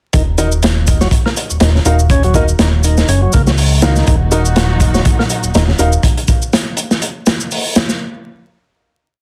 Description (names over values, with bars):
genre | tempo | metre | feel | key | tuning
breakbeat, breaks | 122 BPM | 4/4 | swing 56% on 16ths | Eb minor | A4 = 440 Hz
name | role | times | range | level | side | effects
tonewheel organ | riff | 0.1-5.7 s | Db3 to Db4 | -23 LUFS | equal | overdrive, slow rotary speaker, vintage 12-bit sampler grit, low-pass filter, tape echo
fat analog bass | bass | 0.1-6.0 s | Eb1 to Db2 | -16 LUFS | equal | none
crunchy breakbeat drum kit | drums | 0.1-8.0 s | hi-hat, kick drum, snare drum | -16 LUFS | equal | none
shaker | drums | 0.1-8.0 s | none | -26 LUFS | equal | none
dark grand piano | stabs | 0.4-5.9 s | Eb4 to F5 | -22 LUFS | equal | tape echo
dark chamber string section | sustained chords | 4.1-6.0 s | Bb2 to Gb4 | -23 LUFS | equal | sidechain pumping
room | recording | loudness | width
light reverb | dense, heavily limited modern master, vinyl crackle | -13 LUFS | mono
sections
0.1-8.0 groove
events
none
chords
0.1 Ebm